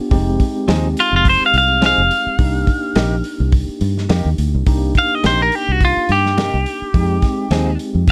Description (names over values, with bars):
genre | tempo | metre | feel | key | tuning
straight-eighth soul blues | 106 BPM | 4/4 | swing 56% on 16ths | C minor | A4 = 442 Hz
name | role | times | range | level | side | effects
tine electric piano | accompaniment | 0.0-8.1 s | Ab3 to G4 | -26 LUFS | equal | none
fingered electric bass | bass | 0.1-8.1 s | F1 to G2 | -20 LUFS | equal | none
warm soul drum kit | drums | 0.1-8.1 s | hi-hat, kick drum, snare drum | -20 LUFS | equal | none
direct-recorded clean electric guitar | stabs | 0.7-7.7 s | C3 to Ab4 | -25 LUFS | equal | none
clean electric guitar | melody | 1.0-7.8 s | F4 to F5 | -18 LUFS | equal | none
room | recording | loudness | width
little or no reverb | none | -16 LUFS | mono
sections
0.0-4.7 A section; 4.7-8.1 A section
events
clean electric guitar solo 0.0-8.1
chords
0.1 Fm7; 2.4 Cm7; 6.9 Fm7